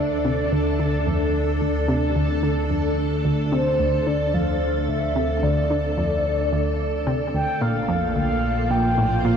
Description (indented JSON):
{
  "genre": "ambient, sequencer-driven space music",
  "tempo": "110 BPM",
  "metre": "4/4",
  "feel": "straight",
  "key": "D minor",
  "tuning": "A4 = 439 Hz",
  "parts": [
    { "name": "mellow horn-like synth lead", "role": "melody", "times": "0.0-9.4 s", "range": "A4 to G5", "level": "-26 LUFS", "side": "equal", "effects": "chorus, shimmer reverb, analog delay" },
    { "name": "string machine, full ensemble", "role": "sustained chords", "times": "0.0-9.4 s", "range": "Bb3 to D5", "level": "-25 LUFS", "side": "equal", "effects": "ensemble chorus, shimmer reverb" },
    { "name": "analog pluck", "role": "riff", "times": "0.0-9.4 s", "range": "D2 to D3", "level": "-25 LUFS", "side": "equal", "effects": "chorus, shimmer reverb, analog delay" },
    { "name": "fat analog bass", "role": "bass", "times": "0.0-9.4 s", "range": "Bb1 to D2", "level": "-26 LUFS", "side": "equal", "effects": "none" }
  ],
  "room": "wet huge ambient reverb, RT60 8.7 s",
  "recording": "dark, warm production",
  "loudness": "-20 LUFS",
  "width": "side -7 dB against mid",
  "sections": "0.0-9.4 A section",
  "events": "none",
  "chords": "0.0 Dm; 7.6 Bb",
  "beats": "0.52 | 1.07 1.61 2.16 2.70 | 3.25 3.79 4.34 4.88 | 5.43 5.98 6.52 7.07 | 7.61 8.16 8.70 9.25"
}